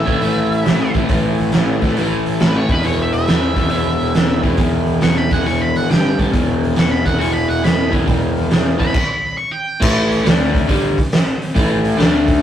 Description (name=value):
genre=blues rock power trio and southern rock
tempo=138 BPM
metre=4/4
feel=swing 66% on 8ths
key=unclear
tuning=A4 = 440 Hz
part: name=octave-fuzz lead guitar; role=melody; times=0.0-9.8 s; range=B4 to C#6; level=-22 LUFS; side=right 1 dB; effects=distortion
part: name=overdriven tonewheel organ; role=sustained chords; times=0.0-8.9 s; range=G3 to A4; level=-30 LUFS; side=right 3 dB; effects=none
part: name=crunchy overdriven guitar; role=riff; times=0.0-12.4 s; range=E2 to D4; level=-17 LUFS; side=left 1 dB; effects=none
part: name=vintage muted picked electric bass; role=bass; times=0.0-12.4 s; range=E1 to D2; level=-25 LUFS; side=equal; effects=none
part: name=raw garage drum kit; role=drums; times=0.1-12.3 s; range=crash cymbal, hi-hat, kick drum, snare drum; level=-17 LUFS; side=right 1 dB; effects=none
room=light reverb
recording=rough rehearsal-room recording, tube saturation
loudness=-14 LUFS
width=side -10 dB against mid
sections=0.0-9.8 A section; 9.8-12.4 B section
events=stop 8.9-9.8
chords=0.0 A; 2.6 E5; 2.8 E; 5.9 G5; 6.3 E; 9.4 N.C.; 9.8 A5; 10.3 D5; 10.7 A5; 12.0 D5